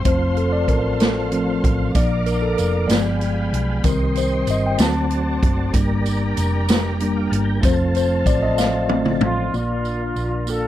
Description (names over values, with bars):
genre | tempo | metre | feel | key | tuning
slow gospel | 63 BPM (dotted quarters) | 6/8 | straight | Bb major | A4 = 444 Hz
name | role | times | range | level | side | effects
mellow tine electric piano | accompaniment | 0.0-10.7 s | Bb2 to A5 | -21 LUFS | left 1 dB | medium stereo tremolo
tonewheel organ | sustained chords | 0.0-10.7 s | D3 to G5 | -30 LUFS | right 3 dB | slow rotary speaker, chorus vibrato
warm studio string section | sustained chords | 0.0-9.5 s | A4 to D6 | -33 LUFS | left 1 dB | none
hollow-body short-scale fingered electric bass | bass | 0.0-10.7 s | F1 to D2 | -23 LUFS | equal | none
swinging big-band drum kit | drums | 0.1-9.4 s | hi-hat, kick drum, snare drum, toms | -21 LUFS | equal | none
tambourine | percussion | 1.9-10.7 s | none | -35 LUFS | right 14 dB | none
warm horn section | melody | 9.2-10.7 s | Bb3 to A4 | -26 LUFS | right 1 dB | none
room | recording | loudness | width
little or no reverb | none | -17 LUFS | side -13 dB against mid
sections
0.0-9.5 A section; 9.5-10.7 B section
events
tine electric piano solo 0.0-9.5; drum fill 8.6-9.5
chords
0.1 F; 1.9 Bb; 2.9 G7b9; 3.8 Cm; 4.8 D7; 5.7 Gm; 7.6 F; 9.5 Bb